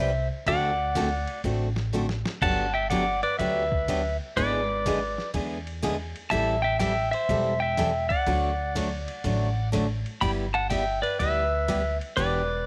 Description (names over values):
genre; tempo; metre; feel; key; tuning
country, western swing; 123 BPM; 4/4; swing 67% on 8ths; G major; A4 = 438 Hz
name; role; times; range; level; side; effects
pedal steel guitar; melody; 0.0-12.7 s; B4 to B5; -28 LUFS; equal; none
picked steel-string acoustic guitar; accompaniment; 0.0-12.4 s; D3 to B4; -32 LUFS; equal; none
upright bass; bass; 0.0-12.7 s; E1 to E2; -33 LUFS; equal; none
lo-fi sampler-style drum kit; drums; 0.5-12.3 s; crash cymbal, hi-hat, kick drum, ride cymbal, snare drum; -38 LUFS; equal; none
room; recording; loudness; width
light reverb; none; -26 LUFS; mono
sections
0.0-12.7 A section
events
drum fill 1.9-2.4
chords
0.5 D7; 2.4 Gmaj7; 4.4 E7/G#; 6.3 Am7; 8.3 D; 10.2 G6